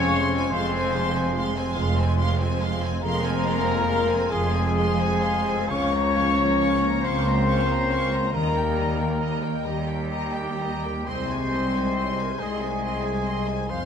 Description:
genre	classical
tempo	41-48 BPM (dotted quarters)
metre	12/8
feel	rubato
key	Ab major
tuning	A4 = 439 Hz
part	warm symphonic violin section	melody	0.0-13.9 s	G5 to Db6	-34 LUFS	equal	none
part	concert flute	second line	0.0-13.9 s	G5 to Db6	-32 LUFS	left 3 dB	none
part	mellow clarinet	second line	0.0-13.9 s	G4 to Db5	-31 LUFS	left 3 dB	none
part	warm symphonic violin section	second line	0.0-13.9 s	Bb4 to F5	-36 LUFS	equal	none
part	warm symphonic viola section	accompaniment	0.0-13.9 s	G3 to Db4	-34 LUFS	equal	none
part	clear trombone section	sustained chords	0.0-13.9 s	C3 to Bb3	-34 LUFS	right 2 dB	none
part	mellow French horn section	sustained chords	0.0-13.9 s	G3 to Db4	-30 LUFS	left 3 dB	none
part	concert harp	arpeggios	0.0-13.9 s	C3 to Bb5	-35 LUFS	left 7 dB	none
part	mellow trumpet section	stabs	0.0-13.9 s	G4 to Db5	-30 LUFS	left 1 dB	none
part	rich symphonic cello section	bass	0.0-13.9 s	C2 to F2	-29 LUFS	right 2 dB	none
part	rich symphonic double bass section	bass	0.0-13.9 s	F1 to Eb2	-28 LUFS	right 2 dB	none
room	wet recital hall reverb, RT60 1.5 s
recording	minimal, uncompressed stereo recording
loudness	-21 LUFS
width	side -7 dB against mid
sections	0.0-13.9 A section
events	none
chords	0.0 Fm; 5.7 Bbm/Db; 8.3 Eb; 11.1 Ab/C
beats	0.49 1.75 | 3.02 4.31 5.70 7.03 | 8.33 9.64 11.06 12.39 | 13.70

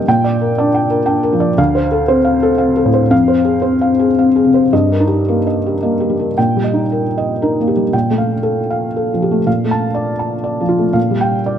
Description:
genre	neoclassical minimalist piano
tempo	107-121 BPM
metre	3/4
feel	rubato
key	unclear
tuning	A4 = 440 Hz
part	felt-muted upright piano	solo	0.0-11.6 s	D2 to A5	-12 LUFS	equal	none
room	moderate scoring stage reverb, RT60 1.6 s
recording	dark, warm production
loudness	-12 LUFS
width	side -9 dB against mid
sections	0.0-6.4 A section; 6.4-11.6 B section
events	none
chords	0.1 Bb6; 1.6 Dm7; 3.1 Fm; 4.7 Eb/G; 6.4 Eb/Bb; 7.9 Fadd9/Bb; 9.5 Dm/Bb; 11.0 Gm7/Bb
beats	| 0.06 0.57 1.07 | 1.58 2.09 2.60 | 3.12 3.63 4.17 | 4.72 5.27 5.82 | 6.36 6.90 7.41 | 7.93 8.44 8.96 | 9.47 9.96 10.46 | 10.96 11.46

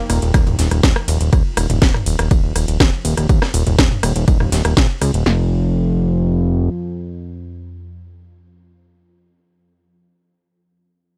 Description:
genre	melodic techno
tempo	122 BPM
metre	4/4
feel	straight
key	unclear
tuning	A4 = 440 Hz
part	dark analog pad	sustained chords	0.0-1.3 s	Eb4 to G5	-40 LUFS	equal	none
part	analog drone	drone	0.0-8.7 s	F2 to F3	-34 LUFS	equal	none
part	fat analog bass	bass	0.1-6.7 s	Eb1 to Db2	-19 LUFS	equal	sidechain pumping
part	breakbeat sampler-style drum kit	drums	0.1-1.2 s	hi-hat, snare drum	-36 LUFS	equal	none
part	house drum kit	drums	0.1-5.2 s	hi-hat, ride cymbal, rim click, snare drum, toms	-22 LUFS	equal	none
part	punchy analog drum machine	drums	0.3-5.4 s	kick drum, snare drum	-17 LUFS	equal	overdrive
room	little or no reverb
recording	dry, gritty hardware recording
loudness	-16 LUFS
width	mono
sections	0.0-5.3 A section; 5.3-9.2 B section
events	drop 0.0-5.3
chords	0.0 Eb; 5.3 N.C.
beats	0.34 0.83 | 1.33 1.82 2.31 2.80 | 3.29 3.79 4.28 4.77 | 5.26 5.75 6.24 6.74 | 7.23 7.72 8.21

